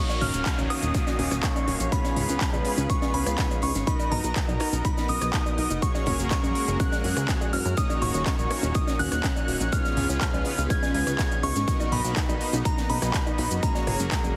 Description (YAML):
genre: progressive house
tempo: 123 BPM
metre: 4/4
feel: straight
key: Eb minor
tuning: A4 = 437 Hz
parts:
  - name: glassy synth bell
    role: melody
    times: 0.0-14.4 s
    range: A#5 to Ab6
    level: -34 LUFS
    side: equal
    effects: chorus, tape echo
  - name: airy dreamy lead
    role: second line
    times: 0.0-14.4 s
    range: A#5 to Ab6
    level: -40 LUFS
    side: equal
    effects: chorus, sidechain pumping, tape echo
  - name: clear chamber string section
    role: sustained chords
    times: 0.0-14.4 s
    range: Cb3 to F5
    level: -40 LUFS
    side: equal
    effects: none
  - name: soft supersaw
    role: stabs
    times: 0.0-14.4 s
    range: Bb3 to D#5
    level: -35 LUFS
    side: equal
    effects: sidechain pumping, tape echo
  - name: downlifter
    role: sound effects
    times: 0.0-3.9 s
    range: none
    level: -42 LUFS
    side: equal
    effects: none
  - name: soft round pluck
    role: arpeggios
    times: 0.1-14.2 s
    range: Db4 to Ab4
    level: -36 LUFS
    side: equal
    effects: analog chorus, sidechain pumping, tape echo
  - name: big-room dance drum kit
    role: drums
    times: 0.1-14.3 s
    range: handclaps, hi-hat, rim click, shaker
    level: -35 LUFS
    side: equal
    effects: sidechain pumping on hats, studio reverb, sidechain pumping on perc, sidechain pumping on cymbals
  - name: huge arena drum kit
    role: drums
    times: 0.1-14.2 s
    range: hi-hat, snare drum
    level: -46 LUFS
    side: equal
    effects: none
  - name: electronic bongos, toms and congas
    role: percussion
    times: 0.1-14.3 s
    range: none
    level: -39 LUFS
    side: equal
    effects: sidechain pumping on toms, studio reverb, sidechain pumping on perc
  - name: plucky analog bass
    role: bass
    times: 0.2-14.3 s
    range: Eb1 to Gb2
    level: -31 LUFS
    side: equal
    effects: sidechain pumping
  - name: electronic kick drum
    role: drums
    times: 0.5-14.2 s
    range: none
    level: -29 LUFS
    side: equal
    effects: studio reverb
room: light reverb, digital ambience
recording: heavily compressed radio sound, multiband compression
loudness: -25 LUFS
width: mono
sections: 0.0-14.4 A section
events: none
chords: 0.0 Ebm7; 1.9 Db7; 3.9 Bmaj7; 5.8 Gbadd9; 7.8 Ebm7; 9.7 Db7; 11.7 Bmaj7; 13.6 Gbadd9